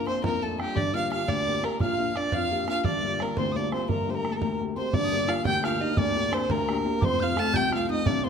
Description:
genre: celtic folk, Celtic jig.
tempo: 115 BPM (dotted quarters).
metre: 6/8.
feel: straight.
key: G minor.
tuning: A4 = 436 Hz.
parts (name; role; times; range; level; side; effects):
dark fiddle; melody; 0.0-8.3 s; G4 to A5; -28 LUFS; right 1 dB; none.
mellow hollow tin whistle; second line; 0.0-8.3 s; G5 to G6; -34 LUFS; left 2 dB; none.
warm French horn; second line; 0.0-8.3 s; G3 to A4; -33 LUFS; right 9 dB; none.
dark upright piano; accompaniment; 0.0-8.3 s; D1 to G4; -29 LUFS; left 6 dB; none.
bodhran; percussion; 0.1-8.3 s; none; -31 LUFS; right 3 dB; none.
room: moderate recital hall reverb, RT60 1.6 s.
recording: close, detailed microphones.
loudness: -24 LUFS.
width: side -6 dB against mid.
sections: 0.0-4.9 A section; 4.9-8.3 B section.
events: none.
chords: 0.0 Bb; 0.8 Gm7; 1.8 Bb; 2.8 Gm7; 3.9 Gmadd9; 4.9 Gm; 7.0 F.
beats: 0.24 | 0.76 1.28 | 1.80 2.33 | 2.85 3.37 | 3.89 4.41 | 4.93 5.45 | 5.97 6.49 | 7.01 7.54 | 8.06.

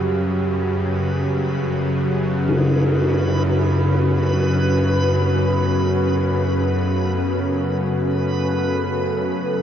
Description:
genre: dark ambient drone.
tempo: free time.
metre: none.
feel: none.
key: unclear.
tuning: A4 = 440 Hz.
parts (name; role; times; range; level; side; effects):
deep dark ambient pad; sustained chords; 0.0-9.6 s; C#4 to B4; -23 LUFS; equal; chorus, built-in reverb, shimmer reverb.
bowed-like drone; drone; 0.0-9.6 s; F#2 to C#3; -20 LUFS; equal; built-in reverb.
backwards swelling texture; texture; 0.0-9.6 s; B4; -28 LUFS; equal; built-in reverb, shimmer reverb.
tam-tam; percussion; 2.5-2.7 s; none; -25 LUFS; left 2 dB; low-pass filter on cymbals.
room: wet huge ambient reverb, RT60 7.8 s.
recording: dark, warm production, nothing above 7.5 kHz.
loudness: -17 LUFS.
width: side -9 dB against mid.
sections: 0.0-9.6 A section.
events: none.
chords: 0.0 Gadd9/F#.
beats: free time.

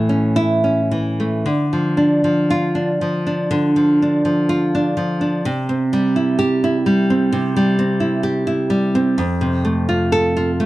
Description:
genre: romantic piece for solo classical guitar.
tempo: 54-66 BPM.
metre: 4/4.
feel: rubato.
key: D minor.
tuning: A4 = 440 Hz.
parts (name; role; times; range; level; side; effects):
nylon-string guitar; solo; 0.0-10.7 s; F2 to A4; -15 LUFS; equal; none.
room: light reverb.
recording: dry, close 1970s-style studio recording.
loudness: -15 LUFS.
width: side -16 dB against mid.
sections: 0.0-10.7 A section.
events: none.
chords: 0.0 A; 1.5 Dm; 5.5 C; 9.2 F.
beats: 0.37 | 1.46 2.49 3.51 4.49 | 5.45 6.39 7.33 8.24 | 9.19 10.14.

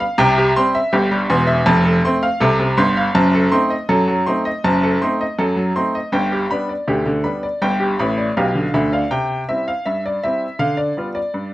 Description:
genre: ragtime piano.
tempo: 81 BPM.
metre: 2/4.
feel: straight.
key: C major.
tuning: A4 = 440 Hz.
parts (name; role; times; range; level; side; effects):
bright baby grand piano; solo; 0.0-11.5 s; E1 to C6; -15 LUFS; equal; none.
room: light reverb.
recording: none.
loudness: -15 LUFS.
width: side -16 dB against mid.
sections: 0.0-9.1 A section; 9.1-11.5 B section.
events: grand piano fill 8.0-9.1.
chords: 0.2 C; 1.7 F; 3.2 F#dim7; 6.1 G; 9.1 C; 10.6 G7/D.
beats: | 0.19 0.93 | 1.67 2.41 | 3.15 3.89 | 4.64 5.38 | 6.13 6.88 | 7.62 8.37 | 9.12 9.86 | 10.60 11.34.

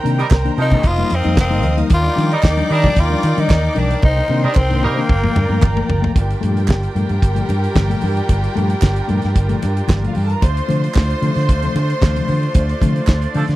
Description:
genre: disco.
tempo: 113 BPM.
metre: 4/4.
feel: straight.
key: G minor.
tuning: A4 = 440 Hz.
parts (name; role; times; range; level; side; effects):
warm studio violin section; second line; 0.0-13.6 s; F4 to Eb6; -25 LUFS; right 1 dB; none.
mellow reed electric piano; accompaniment; 0.0-13.5 s; G2 to Eb4; -23 LUFS; left 5 dB; fast tremolo.
clear studio string section; sustained chords; 0.0-13.6 s; Eb3 to G5; -26 LUFS; right 2 dB; none.
fingered electric bass; bass; 0.0-13.6 s; F1 to Eb3; -18 LUFS; equal; none.
damped 70s drum kit; drums; 0.1-13.6 s; hi-hat, kick drum, snare drum, toms; -15 LUFS; equal; none.
clear horn section; stabs; 0.2-5.0, 13.4 s; F3 to Bb4; -22 LUFS; right 4 dB; none.
congas; percussion; 0.3-13.2 s; none; -26 LUFS; left 3 dB; none.
group handclap; percussion; 0.3-13.2 s; none; -30 LUFS; right 10 dB; none.
raspy tenor saxophone; melody; 0.6-5.9 s; Bb3 to F4; -20 LUFS; left 2 dB; none.
room: little or no reverb.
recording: dry, close 1970s-style studio recording.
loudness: -14 LUFS.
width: side -16 dB against mid.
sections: 0.0-6.2 A section; 6.2-13.6 B section.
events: drum fill 4.0-6.2; band accent 12.5-13.6.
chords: 0.0 Cm7; 0.8 F7sus4; 1.9 Ebmaj7; 4.0 Cm7; 5.1 Gm7; 10.4 Dm7.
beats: 0.31 0.84 1.38 | 1.91 2.44 2.97 3.50 | 4.03 4.56 5.09 5.63 | 6.16 6.69 7.22 7.75 | 8.29 8.82 9.35 9.88 | 10.42 10.95 11.48 12.02 | 12.55 13.08.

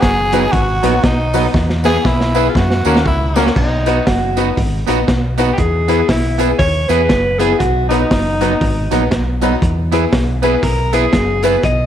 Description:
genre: ska.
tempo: 119 BPM.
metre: 4/4.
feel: swing 60% on 8ths.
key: B major.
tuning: A4 = 440 Hz.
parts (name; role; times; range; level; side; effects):
raspy tenor saxophone; melody; 0.0-3.5 s; D#4 to G#4; -18 LUFS; equal; slapback echo.
clean electric guitar; accompaniment; 0.0-11.6 s; F#3 to G#4; -20 LUFS; right 10 dB; slapback echo.
clear upright piano; stabs; 0.0-11.6 s; A#3 to B4; -20 LUFS; left 9 dB; none.
fingered electric bass; bass; 0.0-11.9 s; F#1 to F#2; -18 LUFS; equal; none.
crunchy breakbeat drum kit; drums; 0.0-11.8 s; crash cymbal, hi-hat, kick drum, snare drum; -18 LUFS; equal; none.
tambourine; percussion; 0.3-11.5 s; none; -36 LUFS; right 11 dB; none.
warm alto saxophone; melody; 3.6-11.9 s; D#4 to D#5; -18 LUFS; equal; none.
room: moderate echo chamber reverb, RT60 2.2 s.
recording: 1960s-style stereo with parts hard left and right.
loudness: -12 LUFS.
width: side -10 dB against mid.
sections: 0.0-3.6 A section; 3.6-11.9 A section.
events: tenor saxophone solo 0.0-3.6; drum fill 1.5-3.6; alto saxophone solo 3.6-11.9.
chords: 0.0 B; 1.5 E; 2.6 F#; 3.6 B; 5.6 E; 7.6 B; 9.6 E.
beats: 0.02 0.53 1.03 | 1.54 2.05 2.55 3.06 | 3.56 4.07 4.57 5.08 | 5.58 6.09 6.59 7.10 | 7.60 8.11 8.61 9.12 | 9.62 10.12 10.63 11.13 | 11.64.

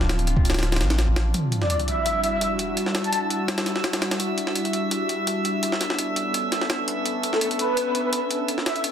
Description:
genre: drum and bass, jungle.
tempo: 168 BPM.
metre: 4/4.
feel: straight.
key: E minor.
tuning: A4 = 440 Hz.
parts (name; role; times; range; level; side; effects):
warbly tape-like pad; sustained chords; 0.0-8.9 s; F3 to A4; -28 LUFS; equal; chorus, built-in reverb.
soft dub sub bass; bass; 0.0-1.3 s; D1 to A1; -22 LUFS; equal; tube saturation.
jungle sampler-style drum kit; drums; 0.0-8.9 s; hi-hat, kick drum, snare drum; -26 LUFS; equal; high-pass filter on hats, high-pass filter on kick, high-pass filter on snare.
sub drop; sound effects; 1.3-2.8 s; none; -27 LUFS; equal; none.
drifting glass-harmonics texture; texture; 2.2-8.9 s; E5 to E6; -30 LUFS; right 2 dB; chorus, built-in reverb.
breathy flute-like synth lead; melody; 1.6-3.2, 7.3-8.8 s; A4 to A5; -25 LUFS; equal; ensemble chorus, dub echo.
room: wet echo chamber reverb, RT60 1.6 s.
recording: dense, heavily limited modern master.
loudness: -21 LUFS.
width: side -9 dB against mid.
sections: 0.0-1.3 A section; 1.3-8.9 B section.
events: drop 0.0-1.3; impact 1.3-2.8.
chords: 0.0 Dm7; 1.3 Em9; 5.6 Bm9.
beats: 0.27 0.63 0.98 | 1.34 1.70 2.06 2.41 | 2.77 3.13 3.48 3.84 | 4.20 4.56 4.91 5.27 | 5.63 5.98 6.34 6.70 | 7.06 7.41 7.77 8.13 | 8.48 8.84.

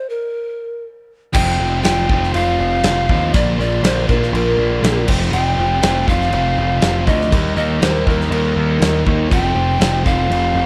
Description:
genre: classic rock.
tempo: 120 BPM.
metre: 4/4.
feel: straight.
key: unclear.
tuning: A4 = 440 Hz.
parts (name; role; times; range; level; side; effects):
breathy mellow pan flute; melody; 0.0-10.7 s; Bb4 to G5; -23 LUFS; equal; none.
crunchy overdriven guitar; riff; 1.3-10.7 s; F2 to F4; -24 LUFS; equal; none.
overdriven electric guitar; riff; 1.3-10.7 s; F2 to G4; -28 LUFS; equal; none.
gated 80s drum kit; drums; 1.3-10.4 s; crash cymbal, kick drum, snare drum; -22 LUFS; equal; none.
picked steel-string acoustic guitar; accompaniment; 1.4-10.7 s; Bb2 to Bb4; -31 LUFS; equal; none.
growling picked electric bass; bass; 1.4-10.7 s; F1 to Eb2; -22 LUFS; equal; overdrive.
tonewheel organ; sustained chords; 9.3-10.7 s; A3 to Bb4; -33 LUFS; equal; none.
room: little or no reverb.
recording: none.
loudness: -16 LUFS.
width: mono.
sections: 0.0-1.3 A section; 1.3-10.7 A section.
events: stop 0.0-1.3.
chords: 0.0 N.C.; 1.3 F; 3.3 Bb; 5.1 F; 7.3 Eb; 9.3 F.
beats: 0.34 0.84 | 1.34 1.84 2.33 2.83 | 3.33 3.83 4.33 4.83 | 5.32 5.82 6.32 6.82 | 7.31 7.81 8.31 8.80 | 9.30 9.80 10.29.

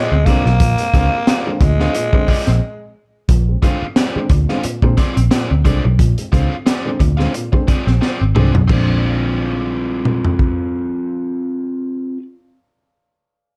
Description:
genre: funk.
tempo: 89 BPM.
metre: 4/4.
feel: swing 56% on 16ths.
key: Bb mixolydian.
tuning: A4 = 441 Hz.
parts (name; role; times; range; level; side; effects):
growling tenor saxophone; melody; 0.0-3.0 s; Ab3 to Bb3; -22 LUFS; equal; plate reverb.
biting overdriven guitar; accompaniment; 0.0-12.2 s; C4 to F5; -25 LUFS; equal; none.
dark upright piano; stabs; 0.0-12.1 s; Bb2 to C4; -26 LUFS; equal; none.
vintage muted picked electric bass; bass; 0.1-12.1 s; Ab1 to Bb2; -18 LUFS; equal; none.
crunchy breakbeat drum kit; drums; 0.3-10.6 s; crash cymbal, hi-hat, kick drum, snare drum, toms; -19 LUFS; equal; none.
room: light reverb.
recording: dark, warm production.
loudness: -16 LUFS.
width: mono.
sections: 0.0-3.3 A section; 3.3-8.7 B section; 8.7-11.4 C section.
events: break 2.6-3.3; drum fill 8.0-8.7.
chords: 0.0 Bb9.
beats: | 0.60 1.27 1.94 2.61 | 3.29 3.96 4.63 5.31 | 5.99 6.66 7.34 8.02 | 8.69 9.37 10.05 10.73.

